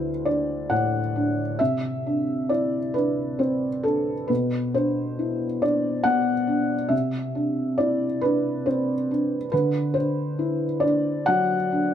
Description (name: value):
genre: neoclassical minimalist piano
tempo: 68 BPM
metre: 3/4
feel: rubato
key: unclear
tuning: A4 = 439 Hz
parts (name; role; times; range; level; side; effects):
- felt-muted upright piano; solo; 0.0-11.9 s; D2 to F#5; -22 LUFS; equal; none
room: light reverb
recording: none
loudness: -22 LUFS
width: side -9 dB against mid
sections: 0.0-11.9 A section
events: none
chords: 0.0 D; 1.6 Cadd9; 4.3 Bmadd11; 6.9 Cadd9; 9.5 D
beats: 0.71 | 1.60 2.49 3.39 | 4.29 5.18 6.05 | 6.92 7.79 8.66 | 9.52 10.38 11.28